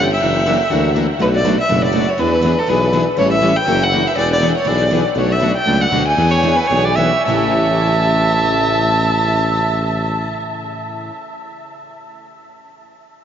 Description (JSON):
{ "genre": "acoustic string swing (jazz manouche)", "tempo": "206-244 BPM", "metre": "4/4", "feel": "swing 57% on 8ths", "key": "A mixolydian", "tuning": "A4 = 441 Hz", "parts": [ { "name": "warm violin", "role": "melody", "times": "0.0-10.4 s", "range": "A4 to A5", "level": "-18 LUFS", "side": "equal", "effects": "tape echo" }, { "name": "picked plugged-in steel-string acoustic guitar", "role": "accompaniment", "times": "0.0-11.1 s", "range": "A2 to A4", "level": "-21 LUFS", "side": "left 3 dB", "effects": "none" }, { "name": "picked steel-string acoustic guitar", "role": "accompaniment", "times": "0.0-11.1 s", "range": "A2 to B4", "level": "-25 LUFS", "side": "right 5 dB", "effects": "none" }, { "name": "breathy tuba", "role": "bass", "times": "0.0-10.3 s", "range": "E1 to E2", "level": "-19 LUFS", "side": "equal", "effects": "none" }, { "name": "edgy soprano saxophone", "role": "second line", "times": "6.3-10.3 s", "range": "B4 to E5", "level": "-19 LUFS", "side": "right 3 dB", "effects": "none" } ], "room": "wet huge ambient reverb, RT60 9.3 s", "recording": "dreamy mix soaked in reverb, nothing above 7.4 kHz", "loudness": "-13 LUFS", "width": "side -9 dB against mid", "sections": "0.0-5.2 A section; 5.2-7.3 B section; 7.3-9.6 C section", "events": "slowing down 5.2-7.3", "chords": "0.2 F#aug7; 1.2 Bm7; 2.2 E7; 3.2 A7; 3.7 F#aug7; 4.2 E7; 5.2 Bm11; 6.2 E7; 7.3 A7" }